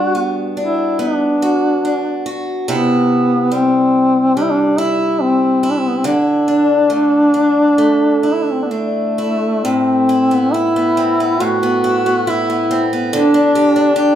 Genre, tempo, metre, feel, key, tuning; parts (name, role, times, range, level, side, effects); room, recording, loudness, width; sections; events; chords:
celtic folk, Celtic slow air; 62-74 BPM; 4/4; rubato; D mixolydian; A4 = 440 Hz
mellow duduk; melody; 0.0-14.2 s; A3 to F#4; -14 LUFS; equal
picked acoustic archtop guitar; accompaniment; 0.0-14.2 s; A2 to G4; -18 LUFS; equal
moderate recital hall reverb, RT60 1.5 s; minimal, uncompressed stereo recording; -12 LUFS; side -10 dB against mid
0.0-9.6 A section; 9.6-14.2 B section
0.0 Gmaj7; 2.7 Cmaj7; 6.0 Dsus2; 9.6 Amadd9; 13.1 Dsus4